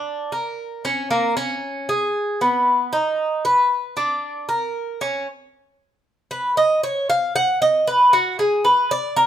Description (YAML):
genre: latin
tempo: 115 BPM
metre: 4/4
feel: straight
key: unclear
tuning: A4 = 439 Hz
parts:
  - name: Cuban tres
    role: solo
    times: 0.0-9.3 s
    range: Bb3 to Gb5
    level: -18 LUFS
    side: equal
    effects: none
room: light reverb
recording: band playing live in one room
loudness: -18 LUFS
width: side -10 dB against mid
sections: 0.0-5.3 A section; 5.3-9.3 B section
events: Cuban tres solo 5.3-9.3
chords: none